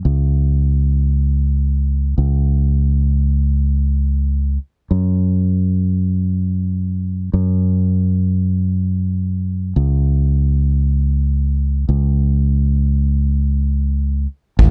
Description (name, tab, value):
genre	indie folk with a building arrangement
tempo	free time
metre	none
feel	none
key	unclear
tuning	A4 = 441 Hz
part	fingered electric bass	bass	0.0-14.7 s	A1 to F#2	-17 LUFS	equal	none
part	soft-mallet drum kit	drums	14.6-14.7 s	kick drum, toms	-11 LUFS	equal	none
room	little or no reverb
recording	dark, warm production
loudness	-18 LUFS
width	mono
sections	0.0-14.6 A section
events	none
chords	none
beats	free time